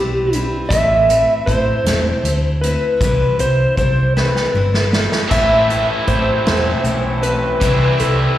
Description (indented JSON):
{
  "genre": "folk rock and heartland rock",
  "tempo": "52 BPM (dotted quarters)",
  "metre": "6/8",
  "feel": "straight",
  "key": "unclear",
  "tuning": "A4 = 440 Hz",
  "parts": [
    { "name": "clean lap steel guitar", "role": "melody", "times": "0.0-8.4 s", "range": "G4 to E5", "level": "-17 LUFS", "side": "equal", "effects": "slapback echo" },
    { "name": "picked steel-string acoustic guitar", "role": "accompaniment", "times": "0.0-8.4 s", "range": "A2 to B4", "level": "-24 LUFS", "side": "left 2 dB", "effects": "slapback echo" },
    { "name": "hollow-body short-scale picked electric bass", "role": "bass", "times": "0.0-8.3 s", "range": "E1 to A2", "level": "-19 LUFS", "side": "equal", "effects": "none" },
    { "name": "unplugged drum kit", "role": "drums", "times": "0.3-8.2 s", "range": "hi-hat, kick drum, snare drum, splash cymbal", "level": "-21 LUFS", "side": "right 1 dB", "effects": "none" },
    { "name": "crunchy overdriven guitar", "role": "riff", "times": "5.3-8.4 s", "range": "A2 to E4", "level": "-19 LUFS", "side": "right 1 dB", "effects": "slapback echo" }
  ],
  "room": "light reverb, small room ambience",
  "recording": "live gig heard through the venue's PA, recital hall reverb",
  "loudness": "-13 LUFS",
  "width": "side -12 dB against mid",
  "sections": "0.0-8.4 A section",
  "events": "drum fill 4.2-5.3",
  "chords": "0.0 Cmaj7; 0.7 Amadd9; 3.0 Cmaj7; 5.3 Amadd9; 7.6 Cmaj7"
}